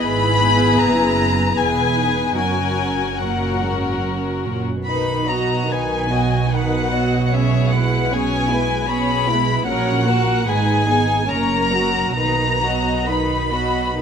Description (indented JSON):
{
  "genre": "classical, slow romantic movement for string orchestra",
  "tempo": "74 BPM",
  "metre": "3/4",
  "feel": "uneven beats, rubato",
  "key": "B major",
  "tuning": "A4 = 441 Hz",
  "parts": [
    { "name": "warm chamber violin section", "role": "melody", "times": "0.0-14.0 s", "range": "E5 to B5", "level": "-21 LUFS", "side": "left 3 dB", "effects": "none" },
    { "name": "warm chamber violin section", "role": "second line", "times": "0.0-14.0 s", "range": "D#4 to D#5", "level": "-24 LUFS", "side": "left 4 dB", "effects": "none" },
    { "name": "warm chamber viola section", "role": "accompaniment", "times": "0.0-14.0 s", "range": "D#3 to G#4", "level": "-23 LUFS", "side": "right 2 dB", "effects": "none" },
    { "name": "dark chamber double bass section", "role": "bass", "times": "0.0-14.0 s", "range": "E1 to B1", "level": "-24 LUFS", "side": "right 3 dB", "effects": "none" },
    { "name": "warm chamber cello section", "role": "bass", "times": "0.0-14.0 s", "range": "E2 to B2", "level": "-25 LUFS", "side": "right 4 dB", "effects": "none" }
  ],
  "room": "moderate scoring stage reverb, RT60 1.5 s",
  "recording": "none",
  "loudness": "-16 LUFS",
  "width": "side -7 dB against mid",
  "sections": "0.0-14.0 A section",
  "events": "none",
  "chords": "0.0 E/G#; 1.6 E; 2.4 F#; 4.9 B; 7.3 C#m7/B; 9.7 F#/A#; 10.5 G#m; 11.3 F#; 12.2 B",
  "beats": "| 0.02 0.80 1.58 | 2.38 3.19 4.03 | 4.87 5.69 6.50 | 7.32 8.11 8.88 | 9.67 10.47 11.29 | 12.16 13.07 13.97"
}